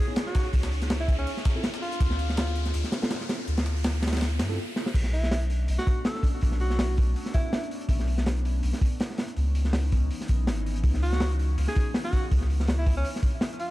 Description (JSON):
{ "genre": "drum and bass, jungle", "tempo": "163 BPM", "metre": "4/4", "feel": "swing 55% on 16ths", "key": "B dorian", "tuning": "A4 = 440 Hz", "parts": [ { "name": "breathy tenor saxophone", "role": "melody", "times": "0.0-2.2, 5.1-7.7, 11.0-13.7 s", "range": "C#4 to A4", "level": "-34 LUFS", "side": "right 1 dB", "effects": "dub echo" }, { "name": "airy breathy pad", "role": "sustained chords", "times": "0.0-13.7 s", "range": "E3 to E5", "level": "-38 LUFS", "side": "left 1 dB", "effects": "chorus" }, { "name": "riser", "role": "sound effects", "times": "0.0-4.9 s", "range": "none", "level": "-39 LUFS", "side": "left 1 dB", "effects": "none" }, { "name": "mellow tine electric piano", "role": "stabs", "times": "0.1-4.6 s", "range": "B3 to A4", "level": "-39 LUFS", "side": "right 2 dB", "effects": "medium stereo tremolo, low-pass filter, dub echo" }, { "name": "breakbeat sampler-style drum kit", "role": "drums", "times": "0.2-4.5 s", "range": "hi-hat, snare drum", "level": "-42 LUFS", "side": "left 2 dB", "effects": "high-pass filter on snare, high-pass filter on hats" }, { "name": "crunchy breakbeat drum kit", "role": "drums", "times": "0.2-13.7 s", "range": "crash cymbal, hi-hat, kick drum, snare drum", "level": "-27 LUFS", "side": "equal", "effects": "none" }, { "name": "soft dub sub bass", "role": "bass", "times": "0.5-13.0 s", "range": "G#1 to G2", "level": "-26 LUFS", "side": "equal", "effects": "none" } ], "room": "light reverb, studio reverb", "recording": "dark, warm production", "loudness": "-24 LUFS", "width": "side -17 dB against mid", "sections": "0.0-4.9 A section; 4.9-13.7 B section", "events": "build-up 0.0-4.9; riser 0.0-4.9; filter sweep on tine electric piano 0.0-4.9; break 4.6-4.9; drum fill 4.8; drop 4.9-13.7", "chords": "0.0 C#sus2; 1.3 Dm7; 4.9 Bm9; 9.4 C#m9; 13.0 Dm9" }